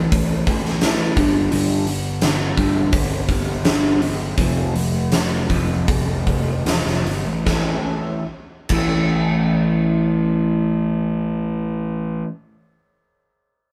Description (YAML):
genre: quiet-loud alternative rock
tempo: 73-86 BPM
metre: 4/4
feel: straight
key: unclear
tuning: A4 = 439 Hz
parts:
  - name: electric guitar through a small old amp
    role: arpeggios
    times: 0.0-12.3 s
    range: F2 to E4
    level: -24 LUFS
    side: equal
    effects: phaser
  - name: fuzz picked electric bass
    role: bass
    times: 0.0-12.2 s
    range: E1 to A1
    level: -24 LUFS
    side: equal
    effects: overdrive
  - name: big rock drum kit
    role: drums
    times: 0.1-8.9 s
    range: crash cymbal, hi-hat, kick drum, snare drum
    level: -24 LUFS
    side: equal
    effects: none
room: light reverb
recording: band playing live in one room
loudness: -20 LUFS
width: mono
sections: 0.0-7.5 A section; 7.5-10.8 B section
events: slowing down 1.5-7.5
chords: 0.0 A5; 1.2 G5; 4.4 F5; 7.5 A